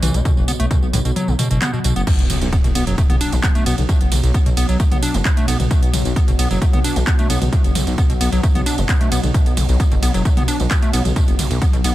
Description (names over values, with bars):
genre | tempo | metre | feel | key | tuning
driving peak-time techno | 132 BPM | 4/4 | straight | unclear | A4 = 440 Hz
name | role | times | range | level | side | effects
overdriven acid bass | riff | 0.0-11.9 s | B1 to D4 | -23 LUFS | equal | sidechain pumping, dub echo
dark detuned saw bass | bass | 0.0-11.9 s | F#1 to B1 | -19 LUFS | equal | sidechain pumping
deep dark ambient pad | drone | 0.0-11.9 s | B2 to F#3 | -26 LUFS | equal | chorus, built-in reverb, sidechain pumping
techno drum kit | drums | 0.0-11.9 s | crash cymbal, handclaps, hi-hat, ride cymbal, tambourine, toms | -24 LUFS | right 1 dB | sidechain pumping on hats, sidechain pumping on perc, sidechain pumping on toms, sidechain pumping on cymbals, tape echo
electronic kick drum | drums | 0.3-11.7 s | none | -17 LUFS | equal | none
impact | sound effects | 2.1-3.9 s | none | -28 LUFS | equal | none
room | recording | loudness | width
little or no reverb | echo-heavy mix | -14 LUFS | side -15 dB against mid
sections
0.0-2.1 A section; 2.1-11.9 B section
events
kick drops out 1.2-2.1; drop 2.1-11.9; impact 2.1-3.9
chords
0.0 B5